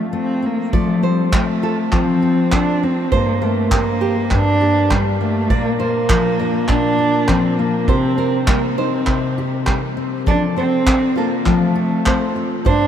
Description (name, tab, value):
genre	acoustic pop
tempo	101 BPM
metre	4/4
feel	straight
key	unclear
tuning	A4 = 441 Hz
part	dark cello	melody	0.0-12.9 s	G3 to D4	-19 LUFS	right 2 dB	none
part	fingerpicked steel-string acoustic guitar	accompaniment	0.0-12.9 s	G2 to Bb4	-19 LUFS	left 4 dB	none
part	nylon-string guitar	arpeggios	0.7-12.9 s	G4 to D5	-26 LUFS	right 6 dB	none
part	unplugged drum kit	drums	0.7-12.8 s	handclaps, kick drum	-21 LUFS	right 1 dB	none
room	moderate huge ambient reverb, RT60 7.8 s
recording	in a vast, echoing space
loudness	-15 LUFS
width	side -9 dB against mid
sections	0.7-12.9 A section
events	none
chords	0.0 Fadd9; 0.7 F; 3.1 Gmadd9; 5.5 Bb; 7.9 Cm; 10.3 F